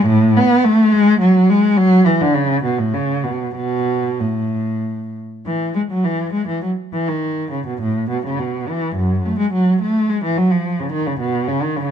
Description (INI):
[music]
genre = classical, baroque-style suite movement for unaccompanied cello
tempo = 92-109 BPM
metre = 3/4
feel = rubato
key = A major, E major from 5.5 s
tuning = A4 = 442 Hz
[part]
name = warm cello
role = solo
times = 0.0-11.9 s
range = F#2 to B3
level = -15 LUFS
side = equal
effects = none
[sound]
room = moderate stone room reverb, RT60 1.2 s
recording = dark, warm production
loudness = -15 LUFS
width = side -8 dB against mid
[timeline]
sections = 0.0-5.5 A section; 5.5-11.9 A section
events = none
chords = none